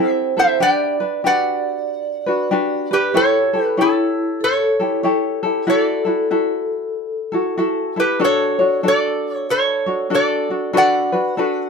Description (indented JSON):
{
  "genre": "Hawaiian",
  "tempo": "95 BPM",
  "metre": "4/4",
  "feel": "swing 62% on 8ths",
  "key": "D major",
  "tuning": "A4 = 440 Hz",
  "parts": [
    { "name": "metal-body resonator slide guitar", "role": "melody", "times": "0.0-11.7 s", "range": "E4 to G5", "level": "-18 LUFS", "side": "right 1 dB", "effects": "none" },
    { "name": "vibraphone with soft mallets", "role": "second line", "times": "0.0-7.9 s", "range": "E4 to D5", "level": "-22 LUFS", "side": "right 1 dB", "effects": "none" },
    { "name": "tenor ukulele", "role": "accompaniment", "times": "0.0-11.7 s", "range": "C4 to C#5", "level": "-20 LUFS", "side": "left 2 dB", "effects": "none" }
  ],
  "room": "light reverb",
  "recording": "band playing live in one room",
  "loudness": "-16 LUFS",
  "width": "side -5 dB against mid",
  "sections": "0.0-8.2 A section; 8.2-11.7 A section",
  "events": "none",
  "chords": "0.0 C6; 0.6 Gmaj7; 3.1 A7; 5.7 Dadd9; 8.2 Dmaj7; 10.7 Bm7",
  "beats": "| 0.60 1.24 1.87 2.50 | 3.14 3.77 4.41 5.04 | 5.67 6.31 6.94 7.57 | 8.21 8.84 9.47 10.11 | 10.74 11.37"
}